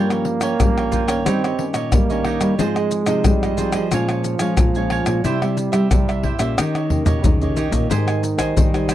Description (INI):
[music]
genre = samba and choro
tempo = 90 BPM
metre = 4/4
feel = straight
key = unclear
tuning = A4 = 440 Hz
[part]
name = breathy trombone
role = second line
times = 0.0-8.9 s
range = Db3 to C4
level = -23 LUFS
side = right 5 dB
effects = none
[part]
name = cavaquinho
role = accompaniment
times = 0.0-8.9 s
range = Eb4 to Ab5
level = -26 LUFS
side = right 6 dB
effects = none
[part]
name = nylon-string guitar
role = accompaniment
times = 0.0-8.9 s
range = G2 to C5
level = -26 LUFS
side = left 5 dB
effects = none
[part]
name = nylon-string guitar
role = bass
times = 0.0-8.9 s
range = Ab2 to Db4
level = -23 LUFS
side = equal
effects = none
[part]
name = maracas, pandeiro, tamborim and surdo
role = percussion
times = 0.1-8.9 s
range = none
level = -19 LUFS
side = left 1 dB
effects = none
[sound]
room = light reverb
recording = dry, close 1970s-style studio recording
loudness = -16 LUFS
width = side -12 dB against mid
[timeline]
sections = 0.0-7.9 A section; 7.9-8.9 B section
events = drum fill 6.6-7.9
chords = 0.0 Gm7b5; 1.3 Eb7/G; 2.6 Fm7/Ab; 3.9 Bbm7; 5.2 C; 6.6 Eb7; 7.9 Abmaj7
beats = 0.60 1.26 1.93 | 2.59 3.26 3.92 4.58 | 5.25 5.92 6.58 7.24 | 7.91 8.57